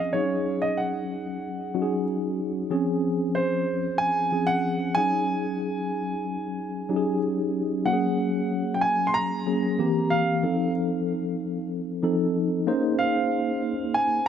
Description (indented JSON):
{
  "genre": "pop",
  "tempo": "93 BPM",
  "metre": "4/4",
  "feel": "straight",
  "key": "unclear",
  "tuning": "A4 = 440 Hz",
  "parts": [
    { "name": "warm concert grand piano", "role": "melody", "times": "0.0-14.3 s", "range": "C5 to C6", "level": "-27 LUFS", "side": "right 2 dB", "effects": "none" },
    { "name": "mellow tine electric piano", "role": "accompaniment", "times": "0.0-14.3 s", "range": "E3 to C5", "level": "-25 LUFS", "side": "left 1 dB", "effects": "medium stereo tremolo, wide subtle chorus" }
  ],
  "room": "light reverb, small room reverb",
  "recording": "none",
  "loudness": "-23 LUFS",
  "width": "side -8 dB against mid",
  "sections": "0.0-7.9 A section; 7.9-14.3 B section",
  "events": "none",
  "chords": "0.1 Ab7sus4; 2.7 Dbmaj7; 5.0 Ab7sus4; 7.9 Ab9sus4; 9.8 C7; 10.4 F7; 12.7 Bbm11",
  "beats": "| 0.14 0.78 1.43 2.07 | 2.71 3.36 4.00 4.64 | 5.29 5.93 6.57 7.22 | 7.86 8.50 9.14 9.79 | 10.43 11.07 11.71 12.35 | 12.99 13.63 14.28"
}